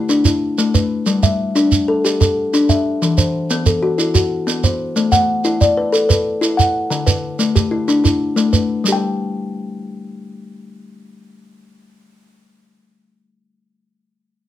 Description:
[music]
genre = southern african traditional, mbira-style interlocking cycle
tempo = 124 BPM (dotted quarters)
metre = 12/8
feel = straight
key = unclear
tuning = A4 = 441 Hz
[part]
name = kalimba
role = arpeggios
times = 0.0-12.5 s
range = D3 to G5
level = -16 LUFS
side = left 2 dB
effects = none
[part]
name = shekere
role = percussion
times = 0.1-9.0 s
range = none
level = -17 LUFS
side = right 4 dB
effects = none
[sound]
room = moderate studio reverb, RT60 0.5 s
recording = none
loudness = -14 LUFS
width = side -12 dB against mid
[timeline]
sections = 0.0-8.8 A section; 8.8-12.7 B section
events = none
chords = 0.0 D5; 1.1 G5; 3.0 E5; 5.0 A5; 6.9 D5; 8.8 N.C.

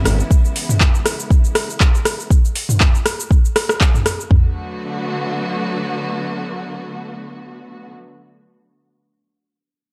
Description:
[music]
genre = afro house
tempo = 120 BPM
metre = 4/4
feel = swing 55% on 16ths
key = B dorian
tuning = A4 = 437 Hz
[part]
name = warm studio string section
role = sustained chords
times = 0.0-7.9 s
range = C#3 to F#4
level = -28 LUFS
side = equal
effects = sidechain pumping
[part]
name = deep house drum kit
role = drums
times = 0.1-4.3 s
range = handclaps, hi-hat, rim click, shaker, toms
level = -20 LUFS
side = equal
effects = overdrive
[part]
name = afro-pop drum kit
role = drums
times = 0.3-4.4 s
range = kick drum, toms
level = -15 LUFS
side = equal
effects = none
[sound]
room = little or no reverb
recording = dry, gritty hardware recording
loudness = -17 LUFS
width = mono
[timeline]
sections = 0.0-4.3 A section; 4.3-8.3 B section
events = drop 0.0-4.3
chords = 0.0 C#m7; 4.3 Bm7

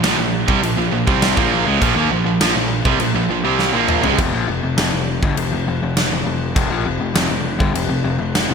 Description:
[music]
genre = hard rock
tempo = 101 BPM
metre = 4/4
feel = straight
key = unclear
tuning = A4 = 438 Hz
[part]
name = overdriven semi-hollow guitar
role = riff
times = 0.0-8.5 s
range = F2 to C4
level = -21 LUFS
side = left 5 dB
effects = none
[part]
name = tight distorted guitar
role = riff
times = 0.0-4.2 s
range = Bb2 to C4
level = -19 LUFS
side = right 12 dB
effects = distortion
[part]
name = fuzz picked electric bass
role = bass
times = 0.0-8.5 s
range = F1 to Eb2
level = -24 LUFS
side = right 1 dB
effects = overdrive
[part]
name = huge arena drum kit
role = drums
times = 0.0-8.5 s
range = crash cymbal, kick drum, snare drum, toms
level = -20 LUFS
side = equal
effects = gated reverb
[sound]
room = moderate lush hall reverb, RT60 3.0 s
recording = bright 1980s-style digital production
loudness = -15 LUFS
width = side -6 dB against mid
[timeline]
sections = 0.0-4.2 A section; 4.2-8.5 A section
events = drum fill 3.6-4.2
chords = 0.0 Bb5; 4.2 F5

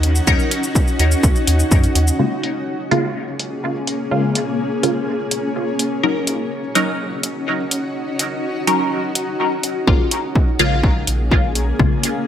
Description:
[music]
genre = dub techno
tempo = 125 BPM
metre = 4/4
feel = straight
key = Bb minor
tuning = A4 = 442 Hz
[part]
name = granular cloud pad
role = sustained chords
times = 0.0-12.3 s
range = Bb3 to Ab4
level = -22 LUFS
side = left 1 dB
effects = built-in reverb, sidechain pumping
[part]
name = soft dub sub bass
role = bass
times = 0.0-2.1, 9.9-11.9 s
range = Bb1 to Gb2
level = -18 LUFS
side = equal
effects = sidechain pumping
[part]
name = electronic hi-hat and shaker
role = drums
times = 0.0-12.1 s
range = none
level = -21 LUFS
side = equal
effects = low-pass filter on perc, low-pass filter on hats
[part]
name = filtered dub chord stab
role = stabs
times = 0.3-12.0 s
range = Db3 to Bb4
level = -20 LUFS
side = left 1 dB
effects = phaser, sidechain pumping, dub echo
[part]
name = electronic kick drum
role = drums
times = 0.3-1.8, 9.9-11.9 s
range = none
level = -16 LUFS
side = equal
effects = none
[sound]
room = moderate plate reverb, RT60 2.1 s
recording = bright 1980s-style digital production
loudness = -16 LUFS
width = side -9 dB against mid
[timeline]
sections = 0.0-2.2 A section; 2.2-9.9 B section; 9.9-12.3 A section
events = none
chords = 0.0 Ebm7; 2.2 Bbm7; 6.0 Ebm7; 9.9 Bbm7

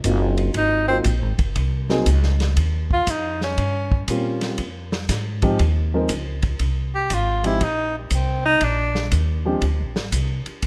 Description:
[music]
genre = jazz, small-group swing and bop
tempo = 119 BPM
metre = 4/4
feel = swing 67% on 8ths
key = unclear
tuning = A4 = 442 Hz
[part]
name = warm baby grand piano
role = accompaniment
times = 0.0-9.6 s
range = F3 to Bb4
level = -27 LUFS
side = equal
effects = none
[part]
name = upright bass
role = bass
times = 0.0-10.7 s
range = Gb1 to Bb2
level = -24 LUFS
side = equal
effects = none
[part]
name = vintage drum kit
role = drums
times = 0.0-10.7 s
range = hi-hat, kick drum, ride cymbal, snare drum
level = -30 LUFS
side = equal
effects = none
[part]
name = warm tenor saxophone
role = melody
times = 0.6-9.1 s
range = G3 to G4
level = -24 LUFS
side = equal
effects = none
[sound]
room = small room ambience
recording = rough home demo mix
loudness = -21 LUFS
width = mono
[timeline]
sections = 0.0-10.7 A section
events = tenor saxophone solo 0.0-10.7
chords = 0.0 Ab13; 2.6 Eb13; 4.6 Fm7; 8.6 Bb9

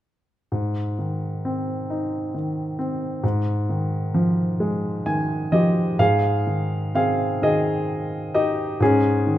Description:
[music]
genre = classical, lyrical solo piano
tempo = 44 BPM (dotted quarters)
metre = 6/8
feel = rubato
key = Ab major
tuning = A4 = 441 Hz
[part]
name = warm grand piano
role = solo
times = 0.5-9.4 s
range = Ab2 to Ab5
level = -20 LUFS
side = equal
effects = none
[sound]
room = moderate recital hall reverb, RT60 1.6 s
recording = minimal, uncompressed stereo recording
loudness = -20 LUFS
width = side -13 dB against mid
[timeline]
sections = 0.5-6.0 A section; 6.0-9.4 B section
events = grand piano fill 4.6-6.0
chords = 0.5 Ab; 3.2 Fm9/Ab; 6.0 Ab6; 8.8 Dbsus2/Ab

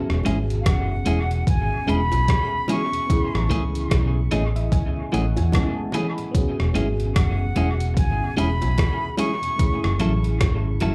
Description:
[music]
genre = lovers rock reggae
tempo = 74 BPM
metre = 4/4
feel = swing 60% on 16ths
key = E major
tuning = A4 = 440 Hz
[part]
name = FM electric piano with tremolo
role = accompaniment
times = 0.0-10.9 s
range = G#3 to B5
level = -33 LUFS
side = equal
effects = phaser, slapback echo
[part]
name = mellow tonewheel organ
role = accompaniment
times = 0.1-10.9 s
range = E2 to E4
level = -36 LUFS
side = equal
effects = none
[part]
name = vintage muted fingered electric bass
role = bass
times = 0.1-10.9 s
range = E1 to E2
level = -25 LUFS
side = equal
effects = none
[part]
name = crisp 8-bit digital drum machine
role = drums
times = 0.1-10.9 s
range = hi-hat, kick drum, rim click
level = -26 LUFS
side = equal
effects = overdrive, dub echo
[part]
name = bongos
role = percussion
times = 0.2-10.6 s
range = none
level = -36 LUFS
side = equal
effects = none
[part]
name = clean electric guitar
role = stabs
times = 0.3-10.9 s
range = E3 to A4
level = -30 LUFS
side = equal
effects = dub echo, slapback echo
[part]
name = concert flute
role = melody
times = 0.6-10.0 s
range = F5 to C#6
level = -30 LUFS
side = equal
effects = tape echo
[sound]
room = light reverb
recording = live gig heard through the venue's PA, club reverb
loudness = -22 LUFS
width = mono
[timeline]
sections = 0.0-10.9 A section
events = FM electric piano fill 3.9-6.3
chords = 0.0 E6; 3.1 Amaj7; 6.3 E6; 9.6 F#m7

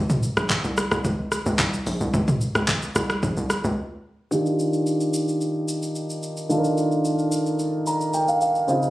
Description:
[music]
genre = amapiano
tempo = 110 BPM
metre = 4/4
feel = straight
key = Eb major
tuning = A4 = 441 Hz
[part]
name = tight log drum bass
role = bass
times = 0.0-3.8 s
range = Bb1 to Db2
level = -26 LUFS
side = equal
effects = none
[part]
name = deep house drum kit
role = drums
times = 0.1-8.9 s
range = handclaps, hi-hat, kick drum, rim click, shaker, toms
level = -24 LUFS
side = equal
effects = none
[part]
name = warm concert grand piano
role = accompaniment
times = 4.3-8.9 s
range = Db3 to Bb5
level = -21 LUFS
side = equal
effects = low-pass filter
[sound]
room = light reverb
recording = recorded on a phone in the room, studio reverb, compression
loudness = -21 LUFS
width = side -16 dB against mid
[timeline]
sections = 0.0-4.3 A section; 4.3-8.9 B section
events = drop 0.0-4.3; break 3.8-4.3; grand piano fill 7.6-8.7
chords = 0.0 Bbmadd9; 4.3 Ebmaj9

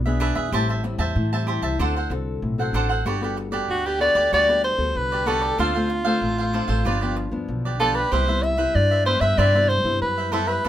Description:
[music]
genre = samba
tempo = 95 BPM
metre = 4/4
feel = straight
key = G major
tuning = A4 = 439 Hz
[part]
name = nylon-string guitar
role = accompaniment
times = 0.0-10.7 s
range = G2 to A4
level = -28 LUFS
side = left 4 dB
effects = none
[part]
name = upright bass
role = bass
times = 0.0-10.7 s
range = G1 to A2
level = -25 LUFS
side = equal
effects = none
[part]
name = cavaquinho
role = accompaniment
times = 0.1-10.7 s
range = D4 to A5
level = -26 LUFS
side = right 3 dB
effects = none
[part]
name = clear soprano saxophone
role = melody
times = 3.7-10.7 s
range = F4 to E5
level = -21 LUFS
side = equal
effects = none
[sound]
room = moderate studio reverb, RT60 0.5 s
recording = minimal, uncompressed stereo recording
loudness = -19 LUFS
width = side -12 dB against mid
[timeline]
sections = 0.0-3.1 A section; 3.1-10.7 B section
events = none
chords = 0.0 E7; 0.5 Am7; 1.8 D7; 3.1 Gmaj9; 5.6 Dm7; 6.9 G7; 8.1 Cmaj7

